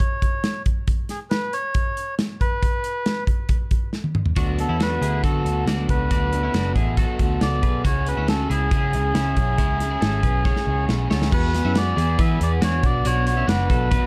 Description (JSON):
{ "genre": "jangly indie pop", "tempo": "138 BPM", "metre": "4/4", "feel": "straight", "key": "unclear", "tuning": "A4 = 435 Hz", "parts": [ { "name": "melodica", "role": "melody", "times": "0.0-14.1 s", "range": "G#4 to E5", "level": "-29 LUFS", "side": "equal", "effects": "none" }, { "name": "modern studio drum kit", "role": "drums", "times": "0.0-14.0 s", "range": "crash cymbal, hi-hat, kick drum, snare drum, toms", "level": "-24 LUFS", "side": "equal", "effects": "none" }, { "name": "crunchy overdriven guitar", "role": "accompaniment", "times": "4.4-14.1 s", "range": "B2 to A4", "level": "-31 LUFS", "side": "equal", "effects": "none" }, { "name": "twelve-string electric guitar", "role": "arpeggios", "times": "4.4-14.1 s", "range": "B3 to C#5", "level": "-32 LUFS", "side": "equal", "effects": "subtle chorus" }, { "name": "vintage muted picked electric bass", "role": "bass", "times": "4.4-14.0 s", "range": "F#1 to E3", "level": "-25 LUFS", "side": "equal", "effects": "none" } ], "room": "light reverb", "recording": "dark, warm production", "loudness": "-22 LUFS", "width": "mono", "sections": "0.0-11.3 A section; 11.3-14.1 B section", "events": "drum fill 3.9-4.4, 10.5-11.3", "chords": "0.0 N.C.; 4.4 Bm7; 7.8 C#m; 11.3 E; 12.8 Bm" }